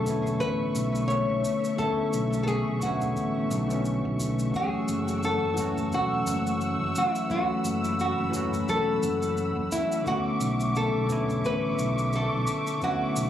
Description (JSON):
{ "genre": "sunset chillout", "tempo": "87 BPM", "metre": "4/4", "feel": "swing 57% on 16ths", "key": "unclear", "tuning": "A4 = 440 Hz", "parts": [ { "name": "nylon-string guitar", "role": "melody", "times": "0.0-13.3 s", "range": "E4 to C#5", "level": "-29 LUFS", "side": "left 1 dB", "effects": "digital delay" }, { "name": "barky tine electric piano", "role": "accompaniment", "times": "0.0-13.3 s", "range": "D3 to F#4", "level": "-29 LUFS", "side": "equal", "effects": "auto-pan, low-pass filter, digital delay" }, { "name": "muted studio string section", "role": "sustained chords", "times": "0.0-13.3 s", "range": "A3 to E6", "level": "-32 LUFS", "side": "left 1 dB", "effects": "none" }, { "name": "fingered electric bass", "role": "bass", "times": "0.0-13.3 s", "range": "E1 to B1", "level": "-31 LUFS", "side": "equal", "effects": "none" }, { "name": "electronic kick drum", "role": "drums", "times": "0.1-13.0 s", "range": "none", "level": "-39 LUFS", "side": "equal", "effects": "overdrive" }, { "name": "shaker", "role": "drums", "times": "0.1-13.3 s", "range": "none", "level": "-40 LUFS", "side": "equal", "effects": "none" } ], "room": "light reverb, small room ambience", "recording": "recorded on a phone in the room, club reverb, compression", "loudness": "-24 LUFS", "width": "side -10 dB against mid", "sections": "0.0-13.3 A section", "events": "filter sweep on tine electric piano 0.0-13.3", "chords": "0.0 Bm11; 4.5 F#m7; 10.1 Bm11", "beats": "0.41 1.10 | 1.79 2.48 3.17 3.86 | 4.55 5.24 5.93 6.62 | 7.30 8.00 8.68 9.37 | 10.06 10.75 11.44 12.13 | 12.82" }